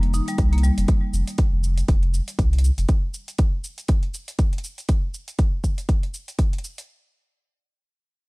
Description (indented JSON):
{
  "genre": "afro house",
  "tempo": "120 BPM",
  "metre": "4/4",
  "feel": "swing 58% on 16ths",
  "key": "unclear",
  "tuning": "A4 = 441 Hz",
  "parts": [
    { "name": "warm sub bass", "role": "bass", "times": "0.0-2.9 s", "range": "F1 to C2", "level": "-20 LUFS", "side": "equal", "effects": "sidechain pumping" },
    { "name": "electronic hi-hat and cabasa", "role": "drums", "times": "0.0-6.9 s", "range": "none", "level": "-37 LUFS", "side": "right 1 dB", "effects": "small room ambience" },
    { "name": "marimba with hard mallets", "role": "arpeggios", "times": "0.1-0.7 s", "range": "G3 to Eb4", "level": "-29 LUFS", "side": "left 1 dB", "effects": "sidechain pumping, tape echo" },
    { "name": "electronic kick drum", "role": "drums", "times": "0.4-6.5 s", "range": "none", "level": "-20 LUFS", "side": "equal", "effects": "small room ambience" }
  ],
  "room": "little or no reverb",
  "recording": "dark, warm production",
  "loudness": "-20 LUFS",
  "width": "side -25 dB against mid",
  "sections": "0.0-6.9 A section",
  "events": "none",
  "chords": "none",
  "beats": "0.39 | 0.89 1.39 1.89 2.39 | 2.89 3.39 3.89 4.39 | 4.89 5.39 5.89 6.39"
}